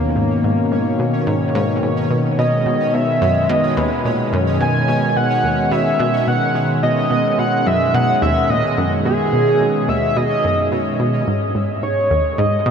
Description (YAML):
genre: ambient, sequencer-driven space music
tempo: 108 BPM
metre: 4/4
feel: straight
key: B major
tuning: A4 = 439 Hz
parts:
  - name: sweeping resonant pad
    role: sustained chords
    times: 0.0-12.7 s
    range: B2 to D#4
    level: -20 LUFS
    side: equal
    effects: chorus
  - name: analog pluck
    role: riff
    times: 0.0-12.7 s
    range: D#2 to D#3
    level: -21 LUFS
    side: equal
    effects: chorus, tape echo
  - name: pulsing gated texture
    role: texture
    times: 0.0-12.7 s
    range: G#3 to C#5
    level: -26 LUFS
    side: left 2 dB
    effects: chorus, built-in reverb
  - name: pulse-width lead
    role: melody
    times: 2.4-12.7 s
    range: G#4 to G#5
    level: -18 LUFS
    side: right 1 dB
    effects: chorus, vintage 12-bit sampler grit, tape echo
room: wet huge ambient reverb, RT60 8.5 s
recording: none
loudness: -15 LUFS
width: side -7 dB against mid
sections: 0.0-11.3 A section; 11.3-12.7 B section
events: none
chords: 0.0 B6; 11.3 G#m